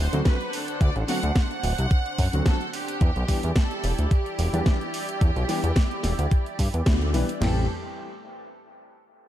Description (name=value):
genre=nu-disco, nu disco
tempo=109 BPM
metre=4/4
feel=swing 54% on 16ths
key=A dorian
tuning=A4 = 440 Hz
part: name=clear studio violin section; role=melody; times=0.0-7.7 s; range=G4 to F#5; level=-33 LUFS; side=right 2 dB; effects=dub echo
part: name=lush unison pad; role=sustained chords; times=0.0-7.7 s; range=D4 to F#5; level=-34 LUFS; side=right 1 dB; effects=chorus, phaser, sidechain pumping
part: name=fat analog bass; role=bass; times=0.0-7.7 s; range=D1 to G2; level=-24 LUFS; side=equal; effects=none
part: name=dark baby grand piano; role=accompaniment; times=0.1-7.6 s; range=D3 to B4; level=-32 LUFS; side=left 1 dB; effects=sidechain pumping, dub echo
part: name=house drum kit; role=drums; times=0.1-7.4 s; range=hi-hat, snare drum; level=-32 LUFS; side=equal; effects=none
part: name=clean 12-bit digital drum machine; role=drums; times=0.3-7.6 s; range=crash cymbal, kick drum, snare drum, toms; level=-21 LUFS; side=equal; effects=overdrive
room=little or no reverb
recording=echo-heavy mix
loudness=-22 LUFS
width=side -12 dB against mid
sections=0.0-7.4 A section; 7.4-9.3 B section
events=drop 0.0-7.4; band accent 6.9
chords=0.0 D7; 3.0 Em7; 7.4 Am7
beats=0.26 | 0.81 1.36 1.91 2.46 | 3.01 3.56 4.11 4.66 | 5.21 5.76 6.31 6.86 | 7.41